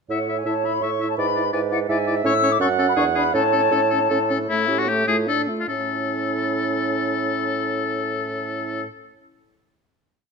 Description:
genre	quick classical-period movement for wind quintet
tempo	144-170 BPM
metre	3/4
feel	rubato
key	A major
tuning	A4 = 439 Hz
part	concert flute	melody	0.1-4.3 s	E5 to E6	-24 LUFS	left 10 dB	none
part	bright oboe	second line	0.1-8.8 s	E4 to E5	-25 LUFS	left 7 dB	none
part	clear French horn	accompaniment	0.1-8.8 s	A3 to E4	-28 LUFS	equal	none
part	warm clarinet	accompaniment	0.1-8.8 s	E4 to F#5	-26 LUFS	right 12 dB	none
part	warm bassoon	bass	0.1-8.8 s	E2 to A2	-25 LUFS	right 4 dB	none
room	moderate recital hall reverb, RT60 1.3 s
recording	none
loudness	-19 LUFS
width	side -4 dB against mid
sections	0.1-4.5 A section; 4.5-5.7 coda; 5.7-8.1 final chord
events	slowing down 2.8-5.7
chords	0.1 A; 1.2 E7/G#; 2.2 A; 2.6 F#m; 3.0 E7; 3.3 A; 4.5 A7; 5.1 Dm/A; 5.7 A

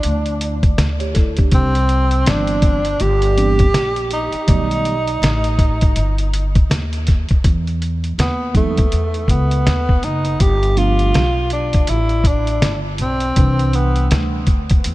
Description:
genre	hip hop, jazz-hop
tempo	81 BPM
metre	4/4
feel	swing 60% on 16ths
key	unclear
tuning	A4 = 441 Hz
part	breathy tenor saxophone	melody	0.0-14.1 s	A3 to G4	-20 LUFS	right 1 dB	tape echo
part	upright bass	bass	0.0-14.9 s	F#1 to E2	-19 LUFS	equal	none
part	lo-fi sampler-style drum kit	drums	0.0-14.9 s	hi-hat, kick drum, snare drum	-16 LUFS	equal	none
part	mellow tine electric piano	accompaniment	1.0-14.4 s	C3 to D5	-25 LUFS	right 2 dB	slow stereo tremolo
room	light reverb, small room reverb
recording	none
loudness	-14 LUFS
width	side -18 dB against mid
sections	0.0-7.4 A section; 7.4-14.9 B section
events	tenor saxophone solo 7.4-14.9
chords	0.0 Gsus2; 1.5 Cmaj9; 4.5 B7alt; 7.4 Emaj7(no3); 10.4 G9; 13.4 Cmaj9

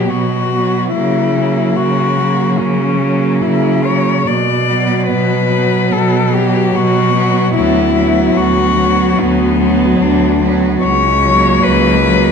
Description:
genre	classical, lyrical piece for cello ensemble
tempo	73 BPM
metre	4/4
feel	rubato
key	B minor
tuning	A4 = 441 Hz
part	rich cello	melody	0.0-12.3 s	B3 to D5	-15 LUFS	left 6 dB	none
part	warm cello	second line	0.0-12.3 s	A#3 to B3	-20 LUFS	right 9 dB	none
part	warm cello	accompaniment	0.0-12.3 s	F#3	-17 LUFS	left 1 dB	none
part	rich cello	bass	0.0-12.3 s	C#2 to C#3	-16 LUFS	right 3 dB	none
room	moderate scoring stage reverb, RT60 1.9 s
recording	dark, warm production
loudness	-11 LUFS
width	side -6 dB against mid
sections	0.0-12.3 A section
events	none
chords	0.0 B5; 0.9 F#7/C#; 4.3 Bm; 7.6 Bm/D; 10.8 F#/C#

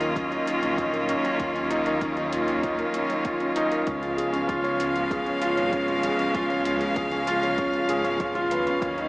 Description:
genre	piano and strings electronica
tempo	97 BPM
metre	4/4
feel	straight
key	unclear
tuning	A4 = 441 Hz
part	clear string quartet	sustained chords	0.0-9.1 s	Db3 to F5	-27 LUFS	equal	sidechain pumping
part	dark grand piano	riff	0.0-9.1 s	Db4 to Db5	-25 LUFS	equal	diffuse ambient delay
part	dark detuned saw bass	bass	0.0-9.1 s	Ab1 to Eb2	-37 LUFS	equal	sidechain pumping
part	electronic hi-hat	drums	0.0-9.1 s	none	-44 LUFS	equal	overdrive
part	electronic kick drum	drums	0.2-8.9 s	none	-35 LUFS	equal	overdrive
room	wet plate reverb, RT60 2.3 s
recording	dreamy mix soaked in reverb, small speaker sound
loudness	-22 LUFS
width	side -25 dB against mid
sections	0.0-9.1 A section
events	none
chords	0.0 Ebm9; 3.9 Db7

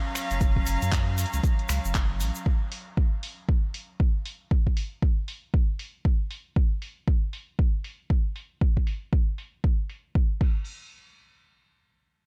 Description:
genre	deep house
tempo	117 BPM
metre	4/4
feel	swing 61% on 16ths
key	unclear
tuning	A4 = 435 Hz
part	clear studio string section	texture	0.0-2.5 s	F#3 to A#5	-37 LUFS	equal	sidechain pumping
part	deep house drum kit	drums	0.2-10.5 s	crash cymbal, finger snaps, handclaps, hi-hat	-39 LUFS	equal	overdrive, low-pass filter on hats, low-pass filter on snare, low-pass filter on cymbals, low-pass filter on room
part	egg shaker	percussion	0.2-2.4 s	none	-40 LUFS	equal	none
part	warm sub bass	bass	0.3-2.3 s	F#1 to F#2	-30 LUFS	equal	sidechain pumping
part	electronic kick drum	drums	0.4-10.5 s	none	-26 LUFS	equal	none
room	little or no reverb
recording	none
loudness	-27 LUFS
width	mono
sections	0.0-10.7 A section; 10.7-12.3 B section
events	none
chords	0.0 F#maj7; 2.5 N.C.

